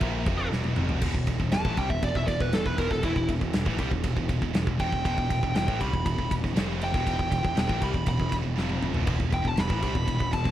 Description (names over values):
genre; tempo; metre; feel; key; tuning
heavy metal; 119 BPM; 4/4; straight; E minor; A4 = 439 Hz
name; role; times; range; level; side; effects
high-gain lead guitar; melody; 0.0-10.5 s; E4 to B5; -32 LUFS; equal; distortion, tape echo
heavy high-gain guitar; riff; 0.0-10.5 s; E2 to A#3; -34 LUFS; right 8 dB; distortion
sludgy distorted guitar; riff; 0.0-10.5 s; E2 to A#3; -33 LUFS; left 5 dB; overdrive
growling picked electric bass; bass; 0.0-10.5 s; E1 to C2; -30 LUFS; equal; overdrive
big rock drum kit; drums; 0.0-10.5 s; crash cymbal, kick drum, ride cymbal, snare drum, toms; -28 LUFS; equal; none
room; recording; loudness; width
little or no reverb; vinyl crackle; -24 LUFS; side -12 dB against mid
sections
0.0-1.0 A section; 1.0-10.5 B section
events
drum fill 0.5-1.0, 8.6-9.1; lead electric guitar solo 1.0-10.5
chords
0.0 E5; 1.0 Em